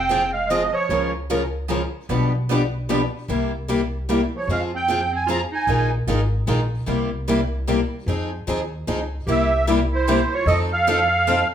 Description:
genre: acoustic string swing (jazz manouche).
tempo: 150 BPM.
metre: 3/4.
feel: swing 63% on 8ths.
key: F minor.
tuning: A4 = 440 Hz.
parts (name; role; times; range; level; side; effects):
musette accordion; melody; 0.0-1.1, 4.4-5.9, 9.3-11.5 s; C5 to Bb5; -20 LUFS; right 3 dB; none.
bright clarinet; second line; 0.0-1.1, 4.4-5.9, 9.3-11.5 s; F3 to A4; -29 LUFS; right 3 dB; none.
upright bass; bass; 0.0-11.4 s; F1 to F2; -25 LUFS; equal; none.
picked acoustic archtop guitar; accompaniment; 0.1-11.4 s; B2 to B4; -28 LUFS; right 6 dB; none.
picked steel-string acoustic guitar; accompaniment; 0.1-11.4 s; B2 to B4; -24 LUFS; left 5 dB; none.
room: moderate large studio reverb, RT60 0.8 s.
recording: band playing live in one room.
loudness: -19 LUFS.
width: side -9 dB against mid.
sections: 0.0-9.3 A section; 9.3-11.5 B section.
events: none.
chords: 0.0 Fm; 0.9 Db6; 2.1 G7/B; 3.3 C7; 4.5 Fm; 5.7 Bb7sus4; 6.9 C7; 8.1 Fm7; 9.3 C7; 10.5 F7.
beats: 0.10 0.50 | 0.90 1.29 1.69 | 2.09 2.49 2.89 | 3.29 3.69 4.08 | 4.48 4.88 5.28 | 5.68 6.08 6.48 | 6.88 7.28 7.68 | 8.08 8.47 8.87 | 9.27 9.67 10.07 | 10.47 10.86 11.26.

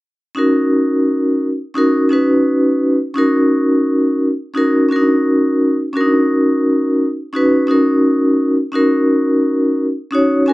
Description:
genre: hip hop.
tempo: 86 BPM.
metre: 4/4.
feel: swing 60% on 16ths.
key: B major.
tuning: A4 = 440 Hz.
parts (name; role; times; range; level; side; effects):
vibraphone with medium hard mallets; accompaniment; 0.3-10.5 s; C#4 to G#5; -12 LUFS; equal; none.
room: light reverb.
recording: none.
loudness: -13 LUFS.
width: side -19 dB against mid.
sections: 0.4-10.5 A section.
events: vibraphone fill 10.1-10.5.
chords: 0.4 Bmaj9 (rootless).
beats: | 0.36 1.06 1.76 2.46 | 3.16 3.85 4.55 5.25 | 5.95 6.64 7.34 8.04 | 8.74 9.44 10.13.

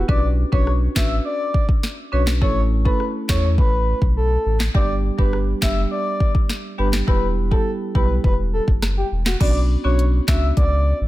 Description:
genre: dancehall.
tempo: 103 BPM.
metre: 4/4.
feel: straight.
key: B minor.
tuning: A4 = 440 Hz.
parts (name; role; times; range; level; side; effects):
breathy flute-like synth lead; melody; 0.0-11.0 s; F#4 to E5; -25 LUFS; left 1 dB; chorus, ping-pong delay.
marimba with medium hard mallets; accompaniment; 0.0-10.6 s; G3 to B4; -27 LUFS; right 2 dB; none.
warm sub bass; bass; 0.0-11.1 s; E1 to E2; -20 LUFS; equal; none.
afro-pop drum kit; drums; 0.1-10.7 s; crash cymbal, handclaps, hi-hat, kick drum, rim click, snare drum; -19 LUFS; equal; none.
room: little or no reverb.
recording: none.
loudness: -17 LUFS.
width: side -16 dB against mid.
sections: 0.0-9.4 A section; 9.4-11.1 B section.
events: none.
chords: 0.1 Bmadd9; 2.4 A; 4.7 G; 7.1 Em; 9.4 Bmadd9.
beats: | 0.09 0.67 1.25 1.83 | 2.42 3.00 3.58 4.16 | 4.75 5.33 5.91 6.49 | 7.08 7.66 8.24 8.82 | 9.41 9.99 10.57.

